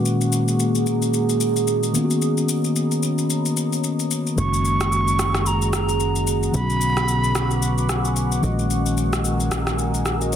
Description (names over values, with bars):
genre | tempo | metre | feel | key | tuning
amapiano | 111 BPM | 4/4 | swing 58% on 16ths | F# major | A4 = 438 Hz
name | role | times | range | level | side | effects
mellow tine electric piano | accompaniment | 0.0-10.4 s | A#2 to G#5 | -22 LUFS | left 2 dB | analog chorus, low-pass filter
deep dark ambient pad | sustained chords | 0.0-10.4 s | A#3 to D#6 | -26 LUFS | right 3 dB | chorus, built-in reverb, low-pass filter
electronic shaker and rim click | drums | 0.1-10.4 s | none | -27 LUFS | left 2 dB | none
breathy bright silver concert flute | melody | 4.4-8.1 s | A#5 to C#6 | -24 LUFS | right 2 dB | low-pass filter, digital delay
plucky analog bass | bass | 4.4-10.4 s | F#1 to B1 | -23 LUFS | right 1 dB | none
room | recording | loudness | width
light reverb | dense, heavily limited modern master | -18 LUFS | side -9 dB against mid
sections
0.0-10.4 A section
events
filter sweep 0.0-10.4; tine electric piano fill 7.6-8.7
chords
0.0 F#69/A#; 1.9 Bmaj9; 4.4 F#69; 6.5 Bmadd9; 8.4 F#69/A#